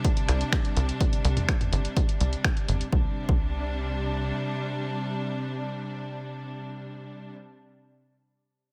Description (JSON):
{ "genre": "melodic techno", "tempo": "125 BPM", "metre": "4/4", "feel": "straight", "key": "unclear", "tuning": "A4 = 440 Hz", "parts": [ { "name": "clear symphonic string section", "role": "sustained chords", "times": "0.0-7.3 s", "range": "C3 to D4", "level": "-34 LUFS", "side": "equal", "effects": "sidechain pumping" }, { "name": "electronic kick drum", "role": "drums", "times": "0.0-3.4 s", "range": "none", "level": "-28 LUFS", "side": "equal", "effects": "none" }, { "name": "punchy analog drum machine", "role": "drums", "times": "0.0-2.9 s", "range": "finger snaps, hi-hat, toms", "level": "-33 LUFS", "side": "equal", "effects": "sidechain pumping on hats, sidechain pumping on toms" }, { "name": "tight sequencer bass", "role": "bass", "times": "0.3-4.3 s", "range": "G1 to C2", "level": "-29 LUFS", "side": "equal", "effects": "sidechain pumping" } ], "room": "little or no reverb", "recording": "none", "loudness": "-28 LUFS", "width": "mono", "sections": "0.0-2.9 A section; 2.9-6.8 B section", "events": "none", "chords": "0.0 C5", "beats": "0.04 0.53 | 1.00 1.49 1.97 2.44 | 2.92 3.40 3.88 4.37 | 4.84 5.33 5.80 6.29" }